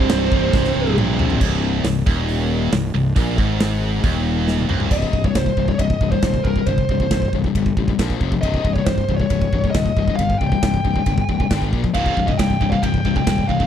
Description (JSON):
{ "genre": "heavy metal", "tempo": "136 BPM", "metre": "4/4", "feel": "straight", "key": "C minor", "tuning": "A4 = 444 Hz", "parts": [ { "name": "bluesy overdriven lead guitar", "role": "melody", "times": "0.0-0.9, 4.9-13.7 s", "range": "Bb4 to G5", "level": "-24 LUFS", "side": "right 1 dB", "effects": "distortion" }, { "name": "high-gain lead guitar", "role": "second line", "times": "0.0-0.9 s", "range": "C4", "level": "-25 LUFS", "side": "right 10 dB", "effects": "distortion" }, { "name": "heavy high-gain guitar", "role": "riff", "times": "0.0-4.9, 11.9-13.7 s", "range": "C2 to C3", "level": "-25 LUFS", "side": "right 13 dB", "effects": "distortion" }, { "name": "sludgy distorted guitar", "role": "riff", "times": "0.0-1.4 s", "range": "C2 to C3", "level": "-26 LUFS", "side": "equal", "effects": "none" }, { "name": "tight distorted guitar", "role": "riff", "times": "0.0-13.7 s", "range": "C2 to Bb3", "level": "-22 LUFS", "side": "left 10 dB", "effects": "distortion" }, { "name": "fuzz fingered electric bass", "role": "bass", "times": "0.0-13.6 s", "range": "C1 to Bb1", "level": "-22 LUFS", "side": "right 1 dB", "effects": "overdrive" }, { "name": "big rock drum kit", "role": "drums", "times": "0.1-13.7 s", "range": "crash cymbal, hi-hat, kick drum, ride cymbal, snare drum, toms", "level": "-21 LUFS", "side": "right 1 dB", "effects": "none" } ], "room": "little or no reverb", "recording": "dry, close 1970s-style studio recording", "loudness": "-16 LUFS", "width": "side -9 dB against mid", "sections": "0.0-1.4 A section; 1.4-4.9 B section; 4.9-13.7 C section", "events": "drum fill 0.5-1.4, 4.5-4.9", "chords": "0.0 C5; 1.4 Cm; 8.0 Bb5; 8.2 F5; 8.4 Cm; 11.5 G5; 11.7 Bb5; 12.0 C5" }